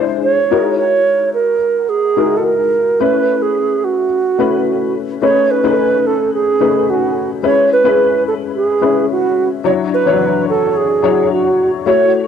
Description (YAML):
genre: pop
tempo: 108 BPM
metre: 4/4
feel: straight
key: unclear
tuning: A4 = 441 Hz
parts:
  - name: dark grand piano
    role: accompaniment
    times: 0.0-12.3 s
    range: E3 to C#5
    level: -16 LUFS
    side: left 10 dB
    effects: ensemble chorus, cassette tape
  - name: bright reedy alto flute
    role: melody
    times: 0.2-12.1 s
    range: F#4 to C#5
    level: -14 LUFS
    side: right 5 dB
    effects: cassette tape
room: moderate spring reverb, RT60 1.3 s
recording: home recording on cassette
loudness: -12 LUFS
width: side -8 dB against mid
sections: 0.0-5.2 A section; 5.2-12.3 B section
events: none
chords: 0.0 Eaug7; 0.5 F#13; 3.0 B9sus4; 5.2 B13; 7.4 E6; 9.7 Dmaj9